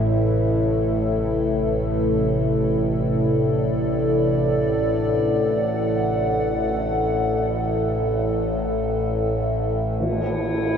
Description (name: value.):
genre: dark ambient drone.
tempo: free time.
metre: none.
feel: none.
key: unclear.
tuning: A4 = 440 Hz.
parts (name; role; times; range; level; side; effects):
dark analog pad; sustained chords; 0.0-10.8 s; C3 to F#5; -22 LUFS; equal; chorus.
overtone-sweeping drone; drone; 0.0-10.8 s; A1 to A2; -23 LUFS; equal; chorus, built-in reverb.
tam-tam; percussion; 10.0-10.3 s; none; -25 LUFS; equal; low-pass filter on cymbals.
metallic inharmonic drone; texture; 10.2-10.8 s; E4; -27 LUFS; equal; chorus, built-in reverb.
room: wet huge ambient reverb, RT60 7.6 s.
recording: none.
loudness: -19 LUFS.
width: side -7 dB against mid.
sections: 0.0-10.0 A section.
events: none.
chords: 0.0 C; 10.0 A5.